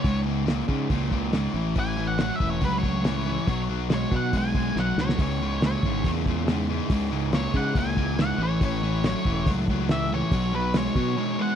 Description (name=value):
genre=classic rock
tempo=140 BPM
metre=4/4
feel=straight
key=C# minor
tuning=A4 = 439 Hz
part: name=octave-fuzz lead guitar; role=melody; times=0.0-11.6 s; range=B4 to G#5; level=-31 LUFS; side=equal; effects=distortion
part: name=biting overdriven guitar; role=riff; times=0.0-11.6 s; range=C#2 to G#3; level=-29 LUFS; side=left 13 dB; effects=none
part: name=crunchy overdriven guitar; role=riff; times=0.0-11.6 s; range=C#2 to G#3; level=-29 LUFS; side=right 11 dB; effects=none
part: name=growling fingered electric bass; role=bass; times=0.0-11.1 s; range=E1 to C#3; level=-28 LUFS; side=equal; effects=overdrive
part: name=cloth-damped thuddy drum kit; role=drums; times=0.0-11.1 s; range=hi-hat, kick drum, snare drum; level=-25 LUFS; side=equal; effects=none
part: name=mellow tonewheel organ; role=sustained chords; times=4.9-11.6 s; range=A3 to E5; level=-39 LUFS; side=right 2 dB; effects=none
room=studio reverb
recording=dry, close 1970s-style studio recording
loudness=-22 LUFS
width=side -9 dB against mid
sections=0.0-11.6 A section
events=lead electric guitar solo 0.0-11.6; drum fill 4.8-5.2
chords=0.0 C#5; 1.6 A; 3.5 B5; 5.2 C#m; 8.4 A; 10.3 B